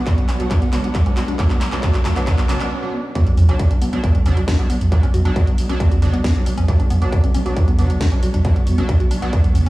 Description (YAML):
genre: driving peak-time techno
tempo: 136 BPM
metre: 4/4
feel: straight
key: B minor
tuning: A4 = 438 Hz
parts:
  - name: sync-sweep polysynth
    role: stabs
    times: 0.0-9.4 s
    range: B2 to D4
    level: -27 LUFS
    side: right 2 dB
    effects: chorus, sidechain pumping, dub echo
  - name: growling FM bass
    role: bass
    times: 0.0-9.7 s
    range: F#1 to B1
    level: -22 LUFS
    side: equal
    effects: sidechain pumping
  - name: swarming drone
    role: drone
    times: 0.0-9.7 s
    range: B2 to B3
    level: -29 LUFS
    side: right 1 dB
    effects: none
  - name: riser and sub drop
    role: sound effects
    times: 0.3-4.9 s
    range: none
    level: -25 LUFS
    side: equal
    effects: none
  - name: dark chamber string section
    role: texture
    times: 0.0-2.7 s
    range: D4 to F#5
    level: -36 LUFS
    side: equal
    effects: none
  - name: electronic kick drum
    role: drums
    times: 0.1-9.4 s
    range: none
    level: -16 LUFS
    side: equal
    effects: distortion, overdrive
  - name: techno drum kit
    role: drums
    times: 0.1-9.7 s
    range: handclaps, hi-hat, snare drum, toms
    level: -23 LUFS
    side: right 1 dB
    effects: overdrive
  - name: woody wave-folded pluck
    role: riff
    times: 0.2-9.7 s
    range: B3 to F#4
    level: -27 LUFS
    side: left 1 dB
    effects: chorus, overdrive, sidechain pumping, tape echo
room: light reverb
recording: played on a big sound system in a bare room, stone room reverb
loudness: -15 LUFS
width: side -18 dB against mid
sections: 0.0-3.2 A section; 3.2-9.7 B section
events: build-up 0.0-3.2; drum fill 0.0-2.7; riser 0.3-2.7; filter sweep on synth arpeggio sound 0.0-3.2; filter sweep on analog polysynth 0.0-3.2; break 2.7-3.2; drop 3.2-9.7; impact 3.2-4.9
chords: 0.0 Bm